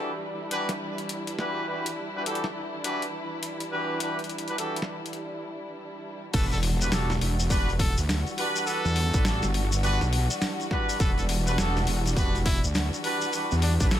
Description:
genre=glitch hop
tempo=103 BPM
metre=4/4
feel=swing 62% on 16ths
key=E minor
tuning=A4 = 440 Hz
part: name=dark studio string section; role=sustained chords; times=0.0-14.0 s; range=E3 to F#4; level=-34 LUFS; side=equal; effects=vintage 12-bit sampler grit, sidechain pumping
part: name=clear horn section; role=stabs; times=0.0-14.0 s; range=E3 to B4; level=-31 LUFS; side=equal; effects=vintage 12-bit sampler grit, sidechain pumping, tape echo
part: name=boom bap sampler-style drum kit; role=drums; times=0.5-14.0 s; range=crash cymbal, hi-hat, snare drum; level=-32 LUFS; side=left 1 dB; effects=studio reverb
part: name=brilliant trumpet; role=melody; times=6.3-13.9 s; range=D4 to A4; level=-36 LUFS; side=equal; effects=tape echo
part: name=wobble bass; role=bass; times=6.3-14.0 s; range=E1 to E2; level=-26 LUFS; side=equal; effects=chorus, overdrive
part: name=electronic kick drum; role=drums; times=6.3-13.9 s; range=none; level=-26 LUFS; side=equal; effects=studio reverb
part: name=shekere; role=percussion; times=6.3-14.0 s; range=none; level=-35 LUFS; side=left 2 dB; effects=none
part: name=impact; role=sound effects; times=6.3-8.7 s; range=none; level=-36 LUFS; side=equal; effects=none
room=light reverb, small room ambience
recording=none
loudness=-24 LUFS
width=side -11 dB against mid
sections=0.0-6.3 A section; 6.3-14.0 B section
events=break 5.2-6.3; drop 6.3-14.0; impact 6.3-8.7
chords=0.0 Em9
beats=0.51 1.10 | 1.68 2.26 2.84 3.43 | 4.01 4.59 5.17 5.76 | 6.34 6.92 7.50 8.09 | 8.67 9.25 9.83 10.42 | 11.00 11.58 12.16 12.75 | 13.33 13.91

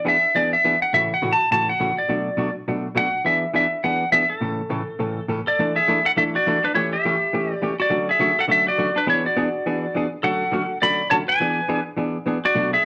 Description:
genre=country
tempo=206 BPM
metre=4/4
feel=swing 60% on 8ths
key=unclear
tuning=A4 = 445 Hz
part: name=clean lap steel guitar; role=melody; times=0.0-12.8 s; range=D4 to B5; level=-22 LUFS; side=equal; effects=none
part: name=hollow-body jazz guitar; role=accompaniment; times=0.0-12.8 s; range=A2 to A4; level=-27 LUFS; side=equal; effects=none
room=wet studio reverb, RT60 0.8 s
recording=none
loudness=-21 LUFS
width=mono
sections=0.0-5.6 A section; 5.6-12.8 B section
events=none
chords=0.0 E7; 0.9 A6; 2.1 Bm7; 3.3 E7; 4.4 A; 5.6 E7sus4; 6.7 A7/E; 7.9 Dmaj7; 9.1 E7; 10.2 Dmaj7; 11.4 E7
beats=0.05 0.34 0.63 | 0.93 1.22 1.51 1.80 | 2.09 2.38 2.67 2.96 | 3.25 3.54 3.84 4.13 | 4.42 4.71 5.00 5.29 | 5.58 5.87 6.16 6.46 | 6.75 7.04 7.33 7.62 | 7.91 8.20 8.49 8.78 | 9.07 9.36 9.65 9.94 | 10.23 10.53 10.82 11.11 | 11.40 11.69 11.98 12.27 | 12.56 12.85

